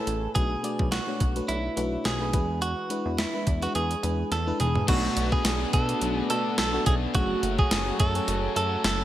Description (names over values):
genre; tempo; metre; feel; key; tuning
1980s-style pop; 106 BPM; 4/4; swing 55% on 16ths; unclear; A4 = 440 Hz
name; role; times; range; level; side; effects
direct-recorded clean electric guitar; melody; 0.0-9.0 s; E4 to A4; -29 LUFS; right 2 dB; none
FM electric piano; accompaniment; 0.0-9.0 s; A2 to G#5; -32 LUFS; left 3 dB; chorus
chorused synth bass; bass; 0.1-9.0 s; F#1 to B2; -30 LUFS; equal; none
clean 12-bit digital drum machine; drums; 0.1-9.0 s; crash cymbal, hi-hat, kick drum, snare drum, tambourine, toms; -27 LUFS; equal; gated reverb
tight distorted guitar; accompaniment; 4.9-9.0 s; F#2 to B3; -36 LUFS; left 7 dB; distortion, wide subtle chorus
chorused pulse-width pad; sustained chords; 4.9-9.0 s; F#3 to F#4; -32 LUFS; right 1 dB; none
room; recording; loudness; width
light reverb; none; -23 LUFS; side -13 dB against mid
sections
0.0-4.9 A section; 4.9-9.0 B section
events
drum fill 4.3-4.9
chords
0.4 Bm7; 2.3 E7; 4.9 Bm7; 7.1 F#madd9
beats
| 0.35 0.92 1.49 2.05 | 2.62 3.18 3.75 4.32 | 4.88 5.45 6.01 6.58 | 7.15 7.71 8.28 8.84